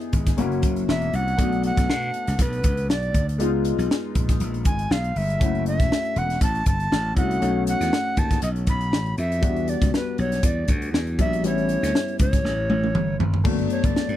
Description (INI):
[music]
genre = polished 1980s jazz-funk pop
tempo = 119 BPM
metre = 4/4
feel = swing 54% on 16ths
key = unclear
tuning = A4 = 438 Hz
[part]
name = warm grand piano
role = accompaniment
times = 0.0-14.2 s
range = F#3 to G#4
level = -28 LUFS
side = left 4 dB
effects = lush chorus
[part]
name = crisp fusion drum kit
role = drums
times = 0.0-14.2 s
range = crash cymbal, hi-hat, kick drum, snare drum, toms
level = -23 LUFS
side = equal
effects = none
[part]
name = slap bass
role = bass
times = 0.1-14.2 s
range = E1 to B2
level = -25 LUFS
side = equal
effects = none
[part]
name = breathy tenor recorder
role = melody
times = 0.9-14.2 s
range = B4 to B5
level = -27 LUFS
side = right 1 dB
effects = none
[sound]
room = little or no reverb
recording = none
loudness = -20 LUFS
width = side -12 dB against mid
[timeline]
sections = 0.0-13.4 A section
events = drum fill 12.4-13.4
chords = 0.4 F#7; 1.4 Bm7; 3.4 C#7; 5.4 F#m7; 7.4 B7; 9.4 Em7; 11.4 A7; 13.4 Gmaj9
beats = 0.38 0.88 | 1.39 1.89 2.39 2.89 | 3.40 3.90 4.40 4.90 | 5.41 5.91 6.41 6.91 | 7.42 7.92 8.42 8.93 | 9.43 9.93 10.43 10.94 | 11.44 11.94 12.45 12.95 | 13.45 13.95